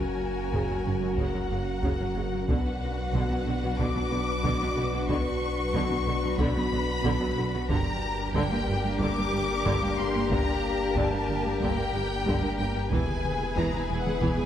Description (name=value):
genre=cinematic, hybrid orchestral and electronic film score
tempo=92 BPM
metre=4/4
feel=straight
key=unclear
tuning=A4 = 440 Hz
part: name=warm symphonic violin section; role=melody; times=0.0-14.5 s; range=Gb5 to D6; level=-34 LUFS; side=left 3 dB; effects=none
part: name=clear symphonic violin section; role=second line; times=0.0-14.5 s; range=Gb4 to B4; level=-35 LUFS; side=left 3 dB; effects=none
part: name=warm symphonic viola section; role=accompaniment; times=0.0-14.5 s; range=Db3 to E4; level=-34 LUFS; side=right 1 dB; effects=none
part: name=ethereal airy pad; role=sustained chords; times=0.0-14.5 s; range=Gb3 to B4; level=-36 LUFS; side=right 1 dB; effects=ensemble chorus, built-in reverb
part: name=warm French horn section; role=sustained chords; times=0.0-14.5 s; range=Bb3 to G#4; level=-34 LUFS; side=left 3 dB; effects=none
part: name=sub bass with octave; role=bass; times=0.0-14.5 s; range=E1 to B1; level=-35 LUFS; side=equal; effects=none
part: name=rich symphonic cello section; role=bass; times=0.5-14.4 s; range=E2 to B2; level=-34 LUFS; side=right 2 dB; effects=none
part: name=rich symphonic double bass section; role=bass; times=0.5-14.3 s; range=E1 to B1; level=-34 LUFS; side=right 2 dB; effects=none
part: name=taiko ensemble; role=drums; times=0.5-14.5 s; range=none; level=-34 LUFS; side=equal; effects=none
room=wet scoring stage reverb, RT60 1.6 s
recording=lossy compression artefacts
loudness=-25 LUFS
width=side -10 dB against mid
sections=0.0-14.5 A section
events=none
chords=0.0 Gb; 2.5 Bm; 7.7 Gm; 12.9 E